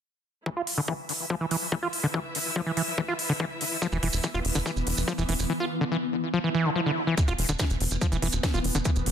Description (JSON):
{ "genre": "psychedelic trance", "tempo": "143 BPM", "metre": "4/4", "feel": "straight", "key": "unclear", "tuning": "A4 = 440 Hz", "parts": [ { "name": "overdriven acid bass", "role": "riff", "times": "0.5-8.9 s", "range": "D3 to F4", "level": "-28 LUFS", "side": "left 1 dB", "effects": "auto-pan, sidechain pumping, ping-pong delay" }, { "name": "electronic kick drum", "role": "drums", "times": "0.5-8.9 s", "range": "none", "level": "-28 LUFS", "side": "equal", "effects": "high-pass filter on kick" }, { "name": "warm symphonic string section", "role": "texture", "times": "0.5-5.5 s", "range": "E4 to E5", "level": "-37 LUFS", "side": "left 1 dB", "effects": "sidechain pumping" }, { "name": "techno drum kit", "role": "drums", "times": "0.7-9.1 s", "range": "hi-hat, snare drum", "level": "-32 LUFS", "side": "equal", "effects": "overdrive" }, { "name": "swarming drone", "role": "sustained chords", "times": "4.2-9.1 s", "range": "E3 to B3", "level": "-33 LUFS", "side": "left 1 dB", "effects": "built-in reverb, sidechain pumping" }, { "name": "maracas", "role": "percussion", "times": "3.8-9.0 s", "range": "none", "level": "-35 LUFS", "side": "right 7 dB", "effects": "none" }, { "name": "tight sequencer bass", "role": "bass", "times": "3.9-9.1 s", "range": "E1 to F1", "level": "-28 LUFS", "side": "equal", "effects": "none" }, { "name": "swell", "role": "sound effects", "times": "6.5-7.2 s", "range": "none", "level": "-33 LUFS", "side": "right 6 dB", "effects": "none" } ], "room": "light reverb", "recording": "dense, heavily limited modern master", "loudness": "-25 LUFS", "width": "side -8 dB against mid", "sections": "0.5-7.2 A section; 7.2-9.1 B section", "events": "fade-in on string section 0.5-7.2; filter sweep on acid bass 0.5-7.2; swell 6.5-7.2", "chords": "0.5 E5" }